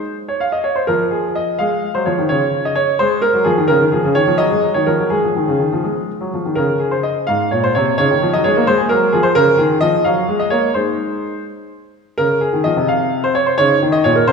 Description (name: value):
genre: classical-period piano sonatina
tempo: 85 BPM (dotted quarters)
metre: 6/8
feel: straight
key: Db major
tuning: A4 = 440 Hz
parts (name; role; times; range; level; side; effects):
- clear concert grand piano; solo; 0.0-14.3 s; Ab2 to F5; -14 LUFS; equal; none
room: wet scoring stage reverb, RT60 1.6 s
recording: recorded in a church or concert hall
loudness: -14 LUFS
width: side -5 dB against mid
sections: 0.0-6.6 A section; 6.6-14.3 A section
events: none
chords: 0.0 Ab (rootless); 0.9 Ebsus4; 2.3 N.C.; 3.0 Ab5; 3.7 Db; 4.4 Ebm11; 5.1 Db; 5.8 Ab5; 6.6 Db5; 8.0 Ebm7/Db; 8.7 Fmadd11; 9.4 Db; 10.1 Gbmaj13; 10.8 Ab; 12.2 Db; 13.6 Eb5/Db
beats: 0.18 | 0.90 1.60 | 2.30 3.00 | 3.69 4.39 | 5.11 5.84 | 6.57 7.28 | 7.98 8.67 | 9.37 10.06 | 10.76 11.47 | 12.19 12.90 | 13.59 14.28